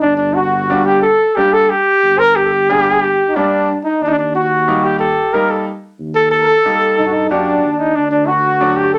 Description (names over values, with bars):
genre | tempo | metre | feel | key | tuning
klezmer | 91 BPM | 3/4 | straight | unclear | A4 = 440 Hz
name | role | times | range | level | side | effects
warm flugelhorn | melody | 0.0-9.0 s | D4 to Bb4 | -16 LUFS | equal | none
mellow accordion | second line | 0.0-9.0 s | D4 to C5 | -20 LUFS | equal | none
mellow tuba | bass | 0.0-9.0 s | G1 to G2 | -26 LUFS | equal | none
bright upright piano | accompaniment | 0.7-8.9 s | F#3 to G4 | -22 LUFS | equal | none
room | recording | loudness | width
moderate studio ambience, RT60 0.5 s | none | -14 LUFS | mono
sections
0.0-9.0 A section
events
speeding up 0.0-9.0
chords
0.0 Gm; 4.0 Eb; 8.0 D